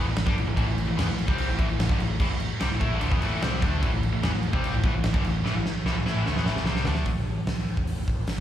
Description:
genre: hard rock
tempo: 148 BPM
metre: 4/4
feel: straight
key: A minor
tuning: A4 = 440 Hz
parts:
  - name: cranked stack guitar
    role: riff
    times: 0.0-7.1 s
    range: G2 to E4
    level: -31 LUFS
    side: left 9 dB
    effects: overdrive
  - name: tight distorted guitar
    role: riff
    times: 0.0-7.1 s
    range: G2 to E4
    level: -33 LUFS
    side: right 10 dB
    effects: distortion, slapback echo
  - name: picked electric bass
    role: bass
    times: 0.0-8.4 s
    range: G1 to A2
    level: -28 LUFS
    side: equal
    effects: none
  - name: huge arena drum kit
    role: drums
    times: 0.2-8.4 s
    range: crash cymbal, hi-hat, kick drum, snare drum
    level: -26 LUFS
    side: equal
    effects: none
room: small room ambience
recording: live gig heard through the venue's PA, club reverb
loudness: -23 LUFS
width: side -11 dB against mid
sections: 0.0-7.1 A section; 7.1-8.4 B section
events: drum fill 5.4-7.1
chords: 0.0 Am; 7.1 A5

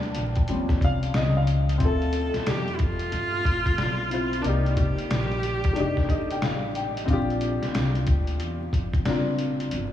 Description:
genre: hip hop, jazz-hop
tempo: 91 BPM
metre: 4/4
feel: swing 65% on 16ths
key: D minor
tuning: A4 = 440 Hz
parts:
  - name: warm upright piano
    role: accompaniment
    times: 0.0-9.7 s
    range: F3 to G5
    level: -28 LUFS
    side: left 2 dB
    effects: analog chorus
  - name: upright bass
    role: bass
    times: 0.0-9.9 s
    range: F1 to A2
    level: -27 LUFS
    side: left 1 dB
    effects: none
  - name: trip hop sampler-style drum kit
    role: drums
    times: 0.0-9.9 s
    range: hi-hat, kick drum, snare drum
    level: -27 LUFS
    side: equal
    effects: vintage 12-bit sampler grit
  - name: rich viola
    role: melody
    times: 1.8-6.8 s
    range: D4 to A4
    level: -30 LUFS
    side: right 1 dB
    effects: none
room: moderate cathedral reverb, RT60 7.3 s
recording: dreamy mix soaked in reverb, vinyl crackle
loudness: -22 LUFS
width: side -11 dB against mid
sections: 0.0-1.8 A section; 1.8-9.9 B section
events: upright piano solo 0.0-1.8; upright piano fill 5.8-7.1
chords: 0.5 Eb13; 1.8 Dm7; 4.4 Cm7; 5.8 F13; 7.1 Bb69

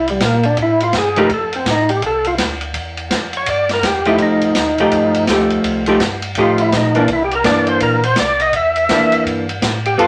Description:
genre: soul jazz organ trio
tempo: 166 BPM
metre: 4/4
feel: swing 63% on 8ths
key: unclear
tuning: A4 = 440 Hz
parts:
  - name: percussive tonewheel organ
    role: melody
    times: 0.0-10.1 s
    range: G3 to E5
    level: -18 LUFS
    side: equal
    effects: slow rotary speaker, overdrive
  - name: mellow tonewheel organ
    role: bass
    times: 0.0-10.1 s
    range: C2 to Bb2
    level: -27 LUFS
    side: equal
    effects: stopped rotary speaker
  - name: open jazz drum kit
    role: drums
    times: 0.1-10.1 s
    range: hi-hat, kick drum, ride cymbal, snare drum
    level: -23 LUFS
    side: equal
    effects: none
  - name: hollow-body jazz guitar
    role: accompaniment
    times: 1.2-1.3, 4.1-10.1 s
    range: E3 to A4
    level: -18 LUFS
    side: equal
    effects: none
room: wet small room reverb, RT60 0.6 s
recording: none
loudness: -16 LUFS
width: mono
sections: 0.0-10.1 A section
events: tonewheel organ solo 0.0-10.1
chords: 0.0 C7; 1.3 F; 2.8 Em7; 4.2 F9; 7.1 C9

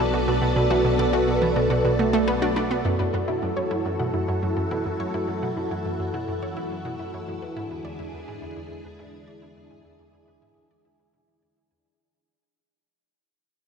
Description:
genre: ambient, sequencer-driven space music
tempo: 105 BPM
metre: 4/4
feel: straight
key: F# minor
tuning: A4 = 440 Hz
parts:
  - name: string machine, full ensemble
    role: sustained chords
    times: 0.0-12.0 s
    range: B3 to D5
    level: -25 LUFS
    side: equal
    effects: ensemble chorus
  - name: wide unison pluck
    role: arpeggios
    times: 0.0-11.9 s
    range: E4 to B5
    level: -31 LUFS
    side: equal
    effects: auto-pan, tape echo
  - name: analog pluck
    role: riff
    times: 0.0-11.9 s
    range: E2 to D4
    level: -27 LUFS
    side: right 2 dB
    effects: chorus, tape echo
  - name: analog drone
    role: bass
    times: 0.0-12.0 s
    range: B1 to F#2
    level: -33 LUFS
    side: equal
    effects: chorus, phaser
room: wet lush hall reverb, RT60 3.2 s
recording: dreamy mix soaked in reverb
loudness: -22 LUFS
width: side -6 dB against mid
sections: 0.0-2.9 A section; 2.9-12.0 B section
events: fade-out on synth arpeggio sound 2.9-12.0; fade-out on synth drone 2.9-12.0; fade-out 2.9-12.0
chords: 0.0 Bm7; 2.9 F#m7; 7.4 E7

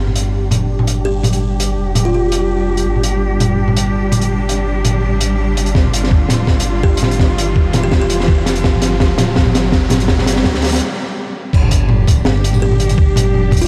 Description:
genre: half-time drum and bass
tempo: 166 BPM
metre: 4/4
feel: half-time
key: unclear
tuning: A4 = 440 Hz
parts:
  - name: warm symphonic cello section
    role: sustained chords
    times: 0.0-13.7 s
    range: G3 to G4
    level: -24 LUFS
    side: equal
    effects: vintage 12-bit sampler grit, sidechain pumping, low-pass filter
  - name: dark detuned saw bass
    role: bass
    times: 0.0-13.7 s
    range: F1 to D2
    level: -20 LUFS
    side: equal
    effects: none
  - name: riser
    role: sound effects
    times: 4.3-10.8 s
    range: none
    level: -27 LUFS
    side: equal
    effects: none
  - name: crunchy breakbeat drum kit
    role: drums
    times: 0.1-13.7 s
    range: crash cymbal, hi-hat, snare drum, tambourine, toms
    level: -19 LUFS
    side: equal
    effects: none
  - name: buzzing kalimba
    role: melody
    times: 1.1-2.2, 6.8-8.5, 12.6-13.7 s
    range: F4 to G4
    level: -25 LUFS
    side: equal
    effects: delay
  - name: electronic kick drum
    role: drums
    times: 5.8-13.6 s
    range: none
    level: -16 LUFS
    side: equal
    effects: none
room: moderate huge ambient reverb, RT60 4.0 s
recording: dreamy mix soaked in reverb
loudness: -15 LUFS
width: mono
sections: 0.0-11.5 A section; 11.5-13.7 B section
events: build-up 0.0-11.5; filter sweep on cello section 0.0-11.5; riser 4.3-10.8; drum fill 5.8-10.8; break 10.8-11.5; drop 11.5-13.7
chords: 0.0 G5

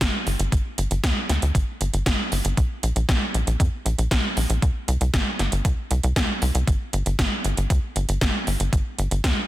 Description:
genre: synthwave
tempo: 117 BPM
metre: 4/4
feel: straight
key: G minor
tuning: A4 = 441 Hz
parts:
  - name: tight sequencer bass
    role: bass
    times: 0.0-9.3 s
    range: G1 to F2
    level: -23 LUFS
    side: equal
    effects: sidechain pumping
  - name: 80s electronic pad drums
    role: drums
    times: 0.0-9.3 s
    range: hi-hat, snare drum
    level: -26 LUFS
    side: right 1 dB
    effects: overdrive
  - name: electronic kick drum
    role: drums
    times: 0.0-9.3 s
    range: none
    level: -23 LUFS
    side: equal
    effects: none
room: little or no reverb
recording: dense, heavily limited modern master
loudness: -20 LUFS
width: side -15 dB against mid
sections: 0.0-9.5 A section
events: none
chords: none

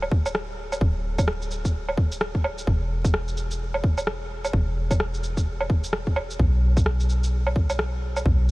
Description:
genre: future garage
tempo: 129 BPM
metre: 4/4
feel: swing 60% on 16ths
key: unclear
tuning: A4 = 441 Hz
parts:
  - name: soft 808-style bass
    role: bass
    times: 0.0-8.5 s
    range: D1 to B1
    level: -26 LUFS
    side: equal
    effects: sidechain pumping
  - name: electronic woodblock, shaker and rim click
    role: drums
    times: 0.0-8.5 s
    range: none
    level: -28 LUFS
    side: right 1 dB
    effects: small room ambience
  - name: electronic kick drum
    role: drums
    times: 0.1-8.4 s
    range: none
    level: -21 LUFS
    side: equal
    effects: small room ambience
room: little or no reverb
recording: vinyl crackle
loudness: -22 LUFS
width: side -21 dB against mid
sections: 0.0-8.5 A section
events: none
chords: none

